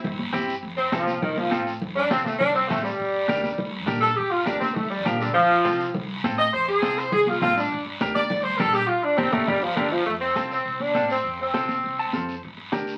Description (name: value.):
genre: latin, cumbia.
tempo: 204 BPM.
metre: 4/4.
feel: straight.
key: F major.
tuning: A4 = 441 Hz.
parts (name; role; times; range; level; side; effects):
warm saxophone section; melody; 0.0-12.3 s; D3 to Eb5; -24 LUFS; equal; none.
upright bass; bass; 0.0-13.0 s; G1 to Bb2; -38 LUFS; equal; none.
congas; percussion; 0.0-12.9 s; none; -33 LUFS; equal; none.
guiro; percussion; 0.0-13.0 s; none; -39 LUFS; equal; none.
semi-hollow electric guitar; accompaniment; 0.3-12.9 s; C4 to A5; -31 LUFS; equal; none.
room: wet club reverb, RT60 0.6 s.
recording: very old 78 rpm record, vinyl crackle.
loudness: -24 LUFS.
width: mono.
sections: 0.6-10.1 A section; 10.1-13.0 B section.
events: saxophone section solo 0.6-10.1; band accent 8.9-10.1; clean electric guitar fill 11.8-12.4.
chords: 0.0 C; 0.6 F; 3.0 Gm; 5.4 F; 7.7 Gm; 10.1 F; 12.4 Gm.